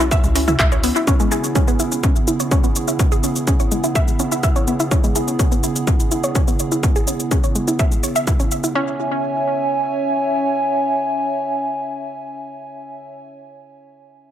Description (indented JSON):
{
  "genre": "melodic techno",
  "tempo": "125 BPM",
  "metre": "4/4",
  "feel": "straight",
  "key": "C# minor",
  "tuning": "A4 = 442 Hz",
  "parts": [
    { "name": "dark analog pad", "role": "sustained chords", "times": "0.0-13.2 s", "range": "C#3 to G#5", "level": "-22 LUFS", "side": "right 1 dB", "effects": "lush chorus, sidechain pumping" },
    { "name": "wide unison pluck", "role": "arpeggios", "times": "0.0-9.0 s", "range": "G#3 to E5", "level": "-21 LUFS", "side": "equal", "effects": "sidechain pumping, analog delay" },
    { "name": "tight sequencer bass", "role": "bass", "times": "0.0-0.9 s", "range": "B1 to C#2", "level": "-22 LUFS", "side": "equal", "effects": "sidechain pumping" },
    { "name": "punchy analog drum machine", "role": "drums", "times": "0.0-8.7 s", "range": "handclaps, hi-hat, rim click, shaker, toms", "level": "-24 LUFS", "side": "left 1 dB", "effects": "overdrive, analog delay" },
    { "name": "electronic kick drum", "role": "drums", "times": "0.1-8.4 s", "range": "none", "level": "-17 LUFS", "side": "equal", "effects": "none" }
  ],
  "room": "moderate spring reverb, RT60 2.0 s",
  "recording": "echo-heavy mix",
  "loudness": "-16 LUFS",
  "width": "side -10 dB against mid",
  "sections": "0.0-8.8 A section; 8.8-12.6 B section",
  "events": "none",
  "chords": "0.0 C#m; 1.1 E/C#; 8.8 C#m"
}